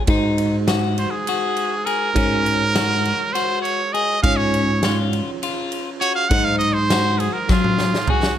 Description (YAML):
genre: progressive instrumental, band music in an uneven meter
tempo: 202 BPM (eighths)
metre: 7/8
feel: straight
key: Ab mixolydian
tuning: A4 = 439 Hz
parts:
  - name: bell-like tine electric piano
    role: accompaniment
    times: 0.0-8.4 s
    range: Gb3 to Db5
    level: -29 LUFS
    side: right 2 dB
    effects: medium stereo tremolo
  - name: electric guitar at the edge of break-up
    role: arpeggios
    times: 0.0-8.3 s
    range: Gb3 to Ab4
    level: -24 LUFS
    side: left 7 dB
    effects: none
  - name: modern bright fingered electric bass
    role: bass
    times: 0.1-7.3 s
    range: Ab2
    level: -21 LUFS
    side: equal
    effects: none
  - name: huge arena drum kit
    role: drums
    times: 0.1-8.4 s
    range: kick drum, ride cymbal, snare drum, toms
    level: -24 LUFS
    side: equal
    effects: none
  - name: brilliant trumpet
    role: melody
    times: 1.0-8.4 s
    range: F4 to Gb5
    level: -21 LUFS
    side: right 3 dB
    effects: none
room: light reverb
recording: none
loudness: -17 LUFS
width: side -10 dB against mid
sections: 0.0-8.4 A section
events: trumpet solo 0.0-8.4; drum fill 7.5-8.4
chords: 0.1 Ab7; 2.2 Gb/Ab; 4.2 Db/Ab; 6.3 Ab7